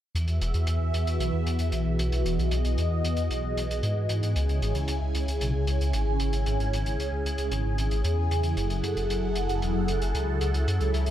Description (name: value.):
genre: synthwave.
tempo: 114 BPM.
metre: 4/4.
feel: straight.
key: E major.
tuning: A4 = 439 Hz.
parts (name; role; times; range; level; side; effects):
phased analog pad; sustained chords; 0.3-11.1 s; C#3 to G#5; -29 LUFS; equal; phaser, chorus, vintage 12-bit sampler grit.
dark detuned saw bass; bass; 0.1-11.1 s; E1 to G#2; -26 LUFS; equal; tube saturation.
hi-hat; drums; 0.2-11.1 s; none; -37 LUFS; equal; none.
room: light reverb, studio ambience.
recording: none.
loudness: -24 LUFS.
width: side -11 dB against mid.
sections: 0.1-11.1 A section.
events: filter sweep on detuned saw bass 0.1-11.1.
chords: 0.1 Eadd9; 4.4 C#m; 8.6 F#m7.